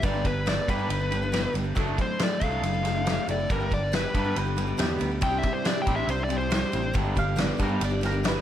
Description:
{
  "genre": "folk rock and heartland rock",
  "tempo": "139 BPM",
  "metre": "4/4",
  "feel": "straight",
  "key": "G major",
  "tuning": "A4 = 438 Hz",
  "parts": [
    { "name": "nasal lead guitar with a parked wah", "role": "melody", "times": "0.0-6.9 s", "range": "Bb4 to G5", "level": "-30 LUFS", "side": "left 1 dB", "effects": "overdrive" },
    { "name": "picked steel-string acoustic guitar", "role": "accompaniment", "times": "0.0-8.4 s", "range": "G2 to B4", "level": "-32 LUFS", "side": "left 4 dB", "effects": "none" },
    { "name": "raw garage guitar", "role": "riff", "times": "0.0-8.4 s", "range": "G2 to D4", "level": "-32 LUFS", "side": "right 1 dB", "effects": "overdrive" },
    { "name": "fingered electric bass", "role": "bass", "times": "0.0-8.4 s", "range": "F#1 to G2", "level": "-30 LUFS", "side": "equal", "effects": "none" },
    { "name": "loose indie drum kit", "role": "drums", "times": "0.0-8.3 s", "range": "kick drum, ride cymbal, snare drum", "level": "-29 LUFS", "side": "equal", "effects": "none" },
    { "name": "mandolin", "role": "second line", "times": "4.4-8.4 s", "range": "B3 to F5", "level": "-33 LUFS", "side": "right 3 dB", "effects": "analog delay" },
    { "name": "mellow tonewheel organ", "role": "sustained chords", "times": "5.2-8.4 s", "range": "B3 to D5", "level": "-38 LUFS", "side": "right 2 dB", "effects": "none" }
  ],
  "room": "light reverb, small room ambience",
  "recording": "none",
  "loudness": "-24 LUFS",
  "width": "side -11 dB against mid",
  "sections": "0.0-8.4 A section",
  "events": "lead electric guitar solo 0.0-8.4",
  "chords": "0.0 G; 1.8 Dadd9/F#; 3.5 G; 5.2 Cadd9; 6.9 G"
}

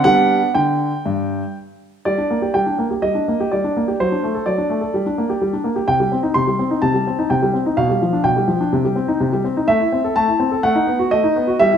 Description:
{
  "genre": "classical-period piano sonatina",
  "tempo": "126 BPM",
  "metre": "4/4",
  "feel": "rubato",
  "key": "G minor",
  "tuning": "A4 = 440 Hz",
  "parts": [
    { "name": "warm concert grand piano", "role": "solo", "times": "0.0-11.8 s", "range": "G2 to C6", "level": "-16 LUFS", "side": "equal", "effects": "none" }
  ],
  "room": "moderate recital hall reverb, RT60 1.3 s",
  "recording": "none",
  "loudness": "-16 LUFS",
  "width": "side -8 dB against mid",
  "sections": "0.0-2.1 A section; 2.1-11.8 B section",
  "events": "none",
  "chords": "0.0 G; 2.1 Gm; 4.0 D7/F#; 4.9 Gm; 5.9 Cm; 7.8 G7/B; 8.7 Cm; 9.7 Am; 10.6 B7/A"
}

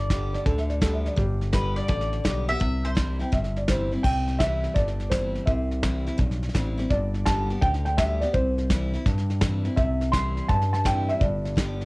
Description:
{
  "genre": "honky-tonk and classic country",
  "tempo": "167 BPM",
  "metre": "4/4",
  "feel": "swing 66% on 8ths",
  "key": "C major",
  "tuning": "A4 = 437 Hz",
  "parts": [
    { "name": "mandolin", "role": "melody", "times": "0.0-3.2 s", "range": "B4 to E5", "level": "-30 LUFS", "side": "left 1 dB", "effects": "cassette tape" },
    { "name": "picked steel-string acoustic guitar", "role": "accompaniment", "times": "0.0-11.8 s", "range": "G2 to G4", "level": "-30 LUFS", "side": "left 1 dB", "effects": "cassette tape" },
    { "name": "smooth synth bass", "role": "bass", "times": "0.0-11.8 s", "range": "G1 to G2", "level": "-27 LUFS", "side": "equal", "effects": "none" },
    { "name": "soft brush drum kit", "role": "drums", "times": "0.1-11.8 s", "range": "crash cymbal, hi-hat, kick drum, snare drum", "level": "-26 LUFS", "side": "equal", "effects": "cassette tape" },
    { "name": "dark upright piano", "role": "second line", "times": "0.3-11.8 s", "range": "E4 to C6", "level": "-28 LUFS", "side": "right 1 dB", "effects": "cassette tape" }
  ],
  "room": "light reverb, small room reverb",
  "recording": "home recording on cassette",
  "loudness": "-22 LUFS",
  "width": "side -24 dB against mid",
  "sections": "0.0-4.0 A section; 4.0-11.8 A section",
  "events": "upright piano solo 4.0-11.8",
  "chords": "0.0 G; 2.6 C; 6.9 G; 8.3 C; 11.2 G"
}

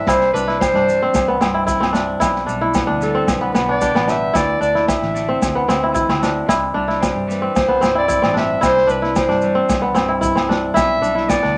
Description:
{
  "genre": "highlife guitar band",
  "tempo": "112 BPM",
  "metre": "4/4",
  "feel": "straight",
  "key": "C major",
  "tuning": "A4 = 438 Hz",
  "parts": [
    { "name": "breathy clarinet", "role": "melody", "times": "0.0-11.6 s", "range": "A4 to E5", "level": "-21 LUFS", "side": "equal", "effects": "none" },
    { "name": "clean electric guitar", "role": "accompaniment", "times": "0.0-11.6 s", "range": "G2 to G4", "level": "-30 LUFS", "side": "equal", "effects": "none" },
    { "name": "kora", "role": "arpeggios", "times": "0.0-11.6 s", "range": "B3 to E4", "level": "-21 LUFS", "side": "equal", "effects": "none" },
    { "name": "fingered electric bass", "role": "bass", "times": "0.1-11.6 s", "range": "A1 to G2", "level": "-30 LUFS", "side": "equal", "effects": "none" },
    { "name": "vintage drum kit", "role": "drums", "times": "0.1-11.5 s", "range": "kick drum, snare drum", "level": "-25 LUFS", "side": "equal", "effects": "none" },
    { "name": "agogo bells", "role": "percussion", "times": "0.1-11.4 s", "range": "none", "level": "-28 LUFS", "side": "equal", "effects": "none" },
    { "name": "maracas", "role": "percussion", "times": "0.1-11.4 s", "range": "none", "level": "-38 LUFS", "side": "equal", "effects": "none" }
  ],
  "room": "wet studio reverb, RT60 0.6 s",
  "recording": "nothing above 11.0 kHz",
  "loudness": "-17 LUFS",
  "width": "mono",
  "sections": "0.0-11.6 A section",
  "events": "none",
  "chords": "0.0 C; 4.4 Dsus2; 6.5 C; 10.8 G/B"
}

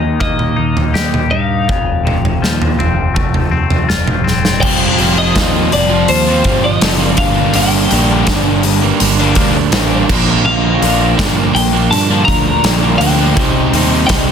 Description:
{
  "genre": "quiet-loud alternative rock",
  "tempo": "82 BPM",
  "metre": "4/4",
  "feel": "straight",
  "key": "unclear",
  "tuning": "A4 = 440 Hz",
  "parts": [
    { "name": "twelve-string electric guitar", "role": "melody", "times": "0.0-14.3 s", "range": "C5 to Bb5", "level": "-18 LUFS", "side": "left 3 dB", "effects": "none" },
    { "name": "twangy electric guitar", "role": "arpeggios", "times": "0.0-4.6 s", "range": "F2 to G4", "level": "-20 LUFS", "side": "left 8 dB", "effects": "spring reverb" },
    { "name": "growling picked electric bass", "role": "bass", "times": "0.0-14.3 s", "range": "F1 to G2", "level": "-17 LUFS", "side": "equal", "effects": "overdrive" },
    { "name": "big rock drum kit", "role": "drums", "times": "0.2-14.3 s", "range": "crash cymbal, hi-hat, kick drum, snare drum, toms", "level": "-16 LUFS", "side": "equal", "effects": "soft clipping on snare" },
    { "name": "fuzz guitar", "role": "riff", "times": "4.6-14.3 s", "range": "G2 to F4", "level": "-18 LUFS", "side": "left 11 dB", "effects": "distortion" },
    { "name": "overdriven electric guitar", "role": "riff", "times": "4.6-14.3 s", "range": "G2 to F4", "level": "-16 LUFS", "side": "right 13 dB", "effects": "none" }
  ],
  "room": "light reverb",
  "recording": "dense, heavily limited modern master",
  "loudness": "-10 LUFS",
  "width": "side -7 dB against mid",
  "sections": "0.0-4.6 A section; 4.6-14.3 B section",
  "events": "drum fill 4.3-4.6",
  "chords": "0.0 Eb; 1.7 F; 4.6 Fsus2; 7.2 Gm; 10.1 Bb; 13.4 Cm"
}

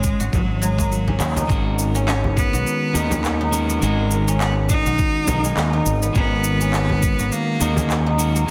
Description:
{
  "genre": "organic downtempo",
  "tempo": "103 BPM",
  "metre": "4/4",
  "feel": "swing 56% on 16ths",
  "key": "G# minor",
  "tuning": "A4 = 437 Hz",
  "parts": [
    { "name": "bright cello", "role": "melody", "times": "0.0-7.9 s", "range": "F#3 to D#4", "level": "-27 LUFS", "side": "equal", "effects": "tape echo" },
    { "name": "guzheng", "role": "arpeggios", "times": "0.0-8.5 s", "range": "F#3 to F#4", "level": "-29 LUFS", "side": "equal", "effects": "tape echo" },
    { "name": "fretless electric bass", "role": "bass", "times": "0.0-8.4 s", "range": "G#1 to D#2", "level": "-24 LUFS", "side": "equal", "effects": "subtle chorus, sidechain pumping" },
    { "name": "electronic kick drum", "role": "drums", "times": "0.0-7.2 s", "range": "none", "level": "-24 LUFS", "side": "equal", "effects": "none" },
    { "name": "electronic shaker and handclaps", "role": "drums", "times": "0.0-8.5 s", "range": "none", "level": "-29 LUFS", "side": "equal", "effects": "none" },
    { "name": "frame drum", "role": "percussion", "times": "0.3-7.9 s", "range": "none", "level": "-29 LUFS", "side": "equal", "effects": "none" },
    { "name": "electric guitar at the edge of break-up", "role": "accompaniment", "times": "1.5-8.5 s", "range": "D#3 to A#4", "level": "-27 LUFS", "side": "equal", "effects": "sidechain pumping, tape echo" }
  ],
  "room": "moderate recital hall reverb, RT60 1.4 s",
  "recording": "dense, heavily limited modern master",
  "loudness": "-20 LUFS",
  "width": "mono",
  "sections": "0.0-1.5 A section; 1.5-8.5 B section",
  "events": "filter sweep on guzheng 0.0-1.5; band accent 1.2",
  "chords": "0.0 D#m/G#; 1.5 G#m7"
}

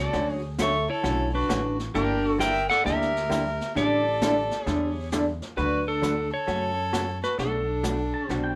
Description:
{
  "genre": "country, western swing",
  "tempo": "132 BPM",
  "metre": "4/4",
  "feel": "swing 66% on 8ths",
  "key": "D major",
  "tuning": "A4 = 440 Hz",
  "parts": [
    { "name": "clean lap steel guitar", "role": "melody", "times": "0.0-8.6 s", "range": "D4 to G5", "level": "-29 LUFS", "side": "equal", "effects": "none" },
    { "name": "clear fiddle", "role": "second line", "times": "0.0-8.6 s", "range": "D4 to E5", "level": "-34 LUFS", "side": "equal", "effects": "none" },
    { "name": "upright bass", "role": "bass", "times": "0.0-8.6 s", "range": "G1 to F#2", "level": "-34 LUFS", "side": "equal", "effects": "none" },
    { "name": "vintage hollow-body jazz guitar", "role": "accompaniment", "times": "0.1-8.5 s", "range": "B2 to B4", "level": "-31 LUFS", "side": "equal", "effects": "none" },
    { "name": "jazz brush drum kit", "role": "drums", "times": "0.1-8.6 s", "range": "brushed snare drum, hi-hat, kick drum, snare drum", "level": "-37 LUFS", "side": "equal", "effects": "none" },
    { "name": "pedal steel guitar", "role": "second line", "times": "8.1-8.6 s", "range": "G5 to A5", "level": "-35 LUFS", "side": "equal", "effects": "none" }
  ],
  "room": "wet club reverb, RT60 0.5 s",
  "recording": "none",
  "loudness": "-26 LUFS",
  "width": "mono",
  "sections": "0.0-5.6 A section; 5.6-8.6 B section",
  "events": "none",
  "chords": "0.1 Dmaj7; 1.9 Gm6; 3.8 A7sus4; 5.6 D6; 6.5 F#m; 7.4 Bm7"
}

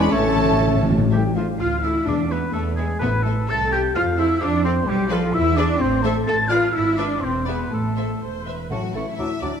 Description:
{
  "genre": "quick classical-period movement for symphony orchestra",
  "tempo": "118-131 BPM",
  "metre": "2/4",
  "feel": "rubato",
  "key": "A minor",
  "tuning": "A4 = 440 Hz",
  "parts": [
    { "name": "rich studio violin section", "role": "melody", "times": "0.0-9.5 s", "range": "D5 to B5", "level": "-32 LUFS", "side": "left 4 dB", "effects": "none" },
    { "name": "clear oboe", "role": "second line", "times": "0.0-9.5 s", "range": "F4 to D6", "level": "-29 LUFS", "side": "right 1 dB", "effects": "none" },
    { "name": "clear studio violin section", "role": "second line", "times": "0.0-9.6 s", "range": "E4 to E5", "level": "-35 LUFS", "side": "left 3 dB", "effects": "none" },
    { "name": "mellow hollow concert flute", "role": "second line", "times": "0.0-9.5 s", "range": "E5 to A6", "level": "-27 LUFS", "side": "left 2 dB", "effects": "none" },
    { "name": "mellow bassoon", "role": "accompaniment", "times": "0.0-0.9, 8.7-9.5 s", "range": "F#3 to A3", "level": "-29 LUFS", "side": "right 1 dB", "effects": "none" },
    { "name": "warm studio viola section", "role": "accompaniment", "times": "0.0-9.5 s", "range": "G#3 to C5", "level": "-31 LUFS", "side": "equal", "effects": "none" },
    { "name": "dark French horn section", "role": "sustained chords", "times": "0.0-9.6 s", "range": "E3 to A4", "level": "-25 LUFS", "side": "left 3 dB", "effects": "none" },
    { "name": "warm trumpet", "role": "stabs", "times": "0.0-0.9 s", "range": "A4 to B4", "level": "-30 LUFS", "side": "right 3 dB", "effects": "none" },
    { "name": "rich studio cello section", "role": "bass", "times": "0.0-9.5 s", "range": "D2 to A4", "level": "-26 LUFS", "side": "right 2 dB", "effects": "none" },
    { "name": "rich studio double bass section", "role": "bass", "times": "0.0-9.5 s", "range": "E1 to F2", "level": "-25 LUFS", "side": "right 2 dB", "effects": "none" },
    { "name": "timpani", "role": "percussion", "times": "0.1-3.5, 8.7-9.1 s", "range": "E2 to A2", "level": "-24 LUFS", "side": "left 2 dB", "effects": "none" }
  ],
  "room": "wet scoring stage reverb, RT60 1.9 s",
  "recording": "none",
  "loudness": "-18 LUFS",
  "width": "side -7 dB against mid",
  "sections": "0.0-1.1 A section; 1.1-8.7 A section",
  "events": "timpani fill 0.1-1.1",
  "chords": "0.1 A; 1.1 N.C.; 1.6 Dm; 2.1 E7; 3.0 Am; 3.5 Am/C; 4.0 F; 4.9 Bm7b5; 5.3 E7; 5.8 Am; 6.3 Bm7b5/A; 6.7 E7/G#; 7.2 E7; 7.7 Am; 8.7 A"
}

